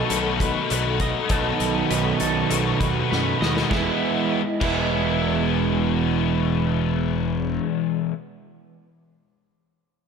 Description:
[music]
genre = rock, shoegaze and dream pop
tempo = 100 BPM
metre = 4/4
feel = straight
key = E major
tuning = A4 = 440 Hz
[part]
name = dark analog pad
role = sustained chords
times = 0.0-6.9 s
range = G#3 to B5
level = -31 LUFS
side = equal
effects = chorus
[part]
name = twangy electric guitar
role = arpeggios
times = 0.0-5.3 s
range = E4 to D#5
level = -31 LUFS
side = right 4 dB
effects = wide subtle chorus, digital delay
[part]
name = biting overdriven guitar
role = riff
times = 0.0-8.1 s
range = E2 to F#4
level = -25 LUFS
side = left 13 dB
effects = analog chorus
[part]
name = crunchy overdriven guitar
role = riff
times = 0.0-8.1 s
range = B2 to A4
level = -25 LUFS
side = right 8 dB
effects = reverse reverb
[part]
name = fuzz picked electric bass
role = bass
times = 0.1-7.6 s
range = E1 to F#2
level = -27 LUFS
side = left 1 dB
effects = overdrive
[part]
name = loose indie drum kit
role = drums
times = 0.1-4.8 s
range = crash cymbal, hi-hat, kick drum, snare drum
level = -28 LUFS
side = left 1 dB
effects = none
[sound]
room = moderate lush hall reverb, RT60 2.2 s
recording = none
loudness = -20 LUFS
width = side -6 dB against mid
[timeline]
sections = 0.0-3.7 A section; 3.7-6.1 B section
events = drum fill 3.1-3.7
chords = 0.0 B7; 3.7 Emaj7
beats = 0.11 0.71 | 1.31 1.91 2.51 3.11 | 3.71 4.32 4.92 5.52

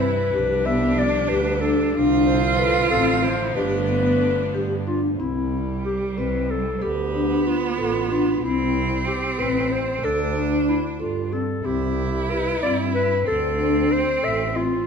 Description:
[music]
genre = contemporary instrumental, chamber music in an uneven meter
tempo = 186 BPM (eighths)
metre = 5/8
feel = straight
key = C major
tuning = A4 = 440 Hz
[part]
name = breathy clarinet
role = melody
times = 0.0-14.9 s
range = E4 to E5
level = -25 LUFS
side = left 3 dB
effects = none
[part]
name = bright cello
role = second line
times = 0.0-14.8 s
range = G3 to F4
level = -26 LUFS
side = right 5 dB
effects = none
[part]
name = rich chamber string section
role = sustained chords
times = 0.0-5.2 s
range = C3 to G4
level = -30 LUFS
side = left 2 dB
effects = none
[part]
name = vibraphone with medium mallets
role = arpeggios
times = 0.0-14.7 s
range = B3 to A4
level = -24 LUFS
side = left 2 dB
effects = none
[part]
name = warm double bass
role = bass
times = 0.0-14.8 s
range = G1 to G2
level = -27 LUFS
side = right 4 dB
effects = none
[sound]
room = light reverb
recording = minimal, uncompressed stereo recording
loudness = -19 LUFS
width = side -6 dB against mid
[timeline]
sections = 0.0-5.2 A section; 5.2-14.9 B section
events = none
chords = 0.3 G7/C; 1.9 Dm7/C; 3.6 G9; 5.2 C; 6.8 D5; 8.4 C; 10.0 D5; 11.6 C; 13.3 D5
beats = 0.02 | 0.34 0.66 0.98 1.30 1.62 | 1.95 2.27 2.59 2.91 3.24 | 3.56 3.89 4.22 4.55 4.87 | 5.20 5.53 5.85 6.17 6.50 | 6.82 7.14 7.46 7.78 8.10 | 8.42 8.74 9.06 9.38 9.71 | 10.03 10.35 10.67 11.00 11.32 | 11.64 11.97 12.29 12.62 12.94 | 13.27 13.59 13.91 14.23 14.55

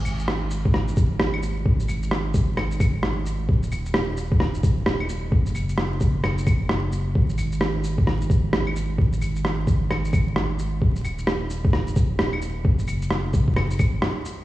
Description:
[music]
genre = future garage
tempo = 131 BPM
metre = 4/4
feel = swing 62% on 16ths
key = unclear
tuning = A4 = 440 Hz
[part]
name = soft dub sub bass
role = bass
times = 0.0-14.0 s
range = D#1 to G#1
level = -26 LUFS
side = equal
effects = sidechain pumping
[part]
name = electronic shaker, claves and rim click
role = drums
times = 0.1-14.4 s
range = none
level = -27 LUFS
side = equal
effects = overdrive, studio reverb
[part]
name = electronic kick drum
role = drums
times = 0.7-13.9 s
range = none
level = -20 LUFS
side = equal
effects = overdrive, studio reverb
[sound]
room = light reverb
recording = played on a big sound system in a bare room, large studio reverb, vinyl crackle, small room reverb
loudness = -20 LUFS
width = side -15 dB against mid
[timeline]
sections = 0.0-14.4 A section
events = break 14.0-14.4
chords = none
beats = 0.28 0.74 1.20 | 1.66 2.12 2.57 3.03 | 3.49 3.95 4.41 4.86 | 5.32 5.78 6.24 6.70 | 7.15 7.61 8.07 8.53 | 8.98 9.44 9.90 10.36 | 10.82 11.28 11.73 12.19 | 12.65 13.11 13.56 14.02

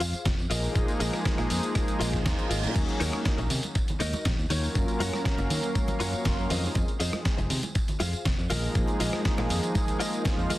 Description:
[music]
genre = nu-disco, nu disco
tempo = 120 BPM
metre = 4/4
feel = straight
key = unclear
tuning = A4 = 440 Hz
[part]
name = direct-recorded clean electric guitar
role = riff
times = 0.0-10.6 s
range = Eb4 to C6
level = -34 LUFS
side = left 2 dB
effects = ensemble chorus, digital delay
[part]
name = fingered electric bass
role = bass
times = 0.0-10.5 s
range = F1 to Eb3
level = -30 LUFS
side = equal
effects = none
[part]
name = dusty soul sampler-style drum kit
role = drums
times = 0.0-10.6 s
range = crash cymbal, hi-hat, rim click, snare drum, tambourine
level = -33 LUFS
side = equal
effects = none
[part]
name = electronic kick drum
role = drums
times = 0.3-10.4 s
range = none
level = -28 LUFS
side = equal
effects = none
[part]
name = warm analog pad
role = accompaniment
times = 0.5-10.6 s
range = F3 to F5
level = -31 LUFS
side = equal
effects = chorus, digital delay
[part]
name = reverse cymbal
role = sound effects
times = 2.1-2.8 s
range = none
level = -39 LUFS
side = right 6 dB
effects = none
[part]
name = congas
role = percussion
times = 2.8-10.6 s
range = none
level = -37 LUFS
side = right 2 dB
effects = none
[sound]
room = little or no reverb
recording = dense, heavily limited modern master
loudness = -25 LUFS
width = side -16 dB against mid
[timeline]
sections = 0.0-10.6 A section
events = reverse cymbal 2.1-2.8; clean electric guitar fill 6.0-6.8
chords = 0.0 Fm; 0.5 Bb7sus4; 2.8 Ebm7; 4.8 Gbmaj7; 6.5 Fm7; 8.5 Bb7sus4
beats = 0.26 | 0.76 1.25 1.75 2.25 | 2.75 3.25 3.75 4.25 | 4.75 5.25 5.75 6.25 | 6.75 7.25 7.75 8.26 | 8.76 9.26 9.76 10.26

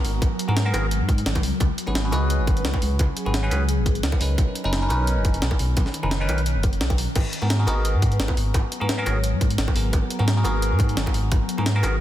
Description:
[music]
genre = liquid drum and bass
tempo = 173 BPM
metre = 4/4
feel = swing 54% on 16ths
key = G# minor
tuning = A4 = 440 Hz
[part]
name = bell-like tine electric piano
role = accompaniment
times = 0.0-12.0 s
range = B3 to B4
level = -29 LUFS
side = equal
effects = phaser, digital delay
[part]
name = ethereal airy pad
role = sustained chords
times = 0.0-12.0 s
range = D#3 to A#5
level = -32 LUFS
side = left 1 dB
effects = ensemble chorus, built-in reverb, phaser, sidechain pumping
[part]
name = dark detuned saw bass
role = bass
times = 0.0-12.0 s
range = F#1 to G#2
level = -23 LUFS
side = equal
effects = none
[part]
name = breakbeat sampler-style drum kit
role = drums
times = 0.0-11.9 s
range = crash cymbal, hi-hat, snare drum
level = -29 LUFS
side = equal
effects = studio reverb
[part]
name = electronic kick drum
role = drums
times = 0.2-11.4 s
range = none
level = -22 LUFS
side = equal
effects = overdrive, studio reverb
[part]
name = bongos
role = percussion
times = 0.2-11.9 s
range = none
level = -34 LUFS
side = right 1 dB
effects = none
[part]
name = vibraphone with soft mallets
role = melody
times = 2.1-4.0, 7.7-9.3 s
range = G#4 to D#5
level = -36 LUFS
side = left 2 dB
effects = digital delay
[sound]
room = light reverb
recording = dense, heavily limited modern master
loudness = -20 LUFS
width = side -12 dB against mid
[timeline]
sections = 0.0-12.0 A section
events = none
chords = 0.0 G#m9; 1.4 C#7sus4; 4.4 Bmaj9; 7.2 G#m9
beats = | 0.22 0.56 0.91 1.26 | 1.61 1.95 2.30 2.65 | 2.99 3.34 3.69 4.03 | 4.38 4.73 5.07 5.42 | 5.77 6.11 6.46 6.81 | 7.16 7.50 7.85 8.20 | 8.54 8.89 9.24 9.58 | 9.93 10.28 10.62 10.97 | 11.32 11.66

